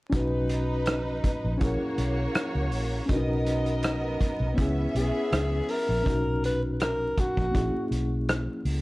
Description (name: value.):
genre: lush 1970s-style soul.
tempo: 81 BPM.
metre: 4/4.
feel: swing 54% on 16ths.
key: B major.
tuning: A4 = 440 Hz.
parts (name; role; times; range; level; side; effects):
warm studio violin section; second line; 0.1-6.0 s; A#3 to E5; -33 LUFS; right 1 dB; none.
mellow reed electric piano; accompaniment; 0.1-8.8 s; A#2 to B4; -31 LUFS; left 1 dB; fast tremolo.
vintage muted fingered electric bass; bass; 0.1-8.8 s; A#1 to C#2; -29 LUFS; equal; none.
vintage drum kit; drums; 0.1-8.8 s; hi-hat, kick drum, rim click; -30 LUFS; equal; none.
breathy alto saxophone; melody; 5.0-7.9 s; F#4 to B4; -29 LUFS; left 1 dB; analog delay.
room: light reverb.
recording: vinyl crackle.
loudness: -24 LUFS.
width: side -20 dB against mid.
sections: 0.1-6.1 A section; 6.1-8.8 B section.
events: none.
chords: 0.1 B; 1.6 F#7/A#; 3.1 Bmaj7; 4.6 C#m7; 6.1 Bmaj7; 7.5 A#m7b5.